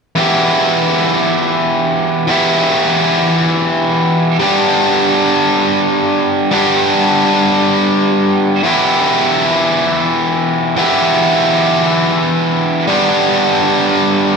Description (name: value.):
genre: rock.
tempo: 57 BPM (dotted quarters).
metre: 6/8.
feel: straight.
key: E minor.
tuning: A4 = 441 Hz.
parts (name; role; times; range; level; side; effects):
overdriven electric guitar; solo; 0.2-14.4 s; E3 to G4; -11 LUFS; equal; none.
room: wet studio reverb, RT60 0.6 s.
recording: band playing live in one room.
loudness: -11 LUFS.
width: side -5 dB against mid.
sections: 0.2-14.4 A section.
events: none.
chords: 0.2 Em; 4.4 G; 8.6 Em; 12.9 G.